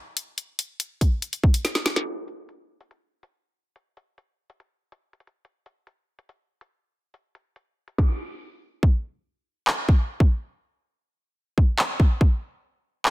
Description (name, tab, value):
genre	hip hop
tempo	142 BPM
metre	4/4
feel	half-time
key	none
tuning	none
part	drill drum kit	drums	0.2-13.1 s	handclaps, hi-hat, kick drum, snare drum	-20 LUFS	equal	none
room	little or no reverb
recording	dense, heavily limited modern master, low-pass filter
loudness	-21 LUFS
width	side -19 dB against mid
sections	0.0-2.1 A section; 2.1-8.8 B section; 8.8-13.1 C section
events	drum fill 1.6-2.1; hi-hats muted 8.8-13.1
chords	none